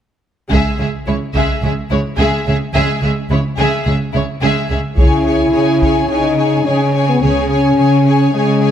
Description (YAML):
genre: cinematic, epic orchestral film score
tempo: 108 BPM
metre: 4/4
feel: straight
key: C# minor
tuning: A4 = 442 Hz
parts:
  - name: warm symphonic violin section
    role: melody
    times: 0.5-8.7 s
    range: C#5 to G#5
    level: -22 LUFS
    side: left 3 dB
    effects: none
  - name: rich symphonic violin section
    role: second line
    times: 0.5-8.7 s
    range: E4 to C#5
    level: -22 LUFS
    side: left 1 dB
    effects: none
  - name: rich symphonic viola section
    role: accompaniment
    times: 0.5-8.7 s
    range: G#3 to G#4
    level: -22 LUFS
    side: right 1 dB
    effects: none
  - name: dark symphonic double bass section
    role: bass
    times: 0.5-7.7 s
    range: C#2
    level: -20 LUFS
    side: right 2 dB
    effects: none
  - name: rich symphonic cello section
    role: bass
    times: 0.5-8.7 s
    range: C#3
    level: -19 LUFS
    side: right 2 dB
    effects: none
  - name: taiko ensemble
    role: drums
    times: 0.5-1.6, 5.0-6.1 s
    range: none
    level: -17 LUFS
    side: equal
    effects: none
  - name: dark French horn section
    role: sustained chords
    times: 5.0-8.7 s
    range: G#3 to E4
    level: -14 LUFS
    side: left 2 dB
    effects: none
room: moderate scoring stage reverb, RT60 1.8 s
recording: none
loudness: -12 LUFS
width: side -9 dB against mid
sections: 0.5-5.0 A section; 5.0-8.7 B section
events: none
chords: 0.5 C#m